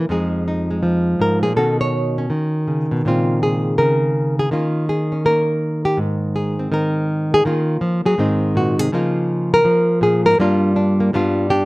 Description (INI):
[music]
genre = solo jazz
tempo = 163 BPM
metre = 4/4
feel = swing 65% on 8ths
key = F minor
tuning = A4 = 440 Hz
[part]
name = nylon-string guitar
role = solo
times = 0.0-11.7 s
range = F2 to C#5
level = -16 LUFS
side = equal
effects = slapback echo
[sound]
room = little or no reverb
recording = recorded outdoors, with no room sound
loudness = -16 LUFS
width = side -21 dB against mid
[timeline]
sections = 0.1-11.7 A section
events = nylon-string guitar solo 0.0-11.7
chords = 0.1 Fm7; 1.6 Badd9; 3.0 Bbm11; 4.5 Ebsus2; 6.0 Abadd9; 7.4 Ebm9; 8.2 Abadd9; 8.9 Db69; 10.4 Gm7; 11.1 G7